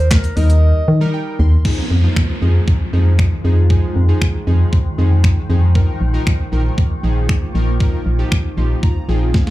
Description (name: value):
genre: dance-pop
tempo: 117 BPM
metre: 4/4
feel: straight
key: F minor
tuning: A4 = 441 Hz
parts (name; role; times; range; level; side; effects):
- mellow clarinet; melody; 0.0-1.1 s; Bb4 to Eb5; -24 LUFS; right 2 dB; digital delay, slapback echo
- glassy digital keys; accompaniment; 0.0-9.5 s; F3 to C6; -25 LUFS; equal; chorus, slapback echo
- organ-like FM bass; bass; 0.0-9.5 s; Bb1 to Eb3; -13 LUFS; equal; sidechain pumping
- crisp 8-bit digital drum machine; drums; 0.1-9.5 s; crash cymbal, finger snaps, handclaps, hi-hat, kick drum, shaker, snare drum; -15 LUFS; equal; none
- tube shaker; percussion; 0.1-0.6 s; none; -42 LUFS; left 10 dB; none
- granular cloud pad; sustained chords; 2.6-9.5 s; Eb3 to G5; -27 LUFS; equal; built-in reverb, sidechain pumping
- downlifter; sound effects; 1.6-5.8 s; none; -28 LUFS; right 2 dB; slapback echo
room: little or no reverb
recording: live gig heard through the venue's PA, club ambience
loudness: -13 LUFS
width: side -16 dB against mid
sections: 0.0-1.6 A section; 1.6-9.5 B section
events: drums muted 0.6-1.6; synth keys fill 0.9-1.6, 8.3-9.5; drum fill 9.3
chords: 0.0 Eb; 1.6 Fm7; 5.8 Bbsus4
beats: 0.11 0.62 1.14 | 1.65 2.16 2.68 3.19 | 3.70 4.21 4.73 5.24 | 5.75 6.27 6.78 7.29 | 7.80 8.32 8.83 9.34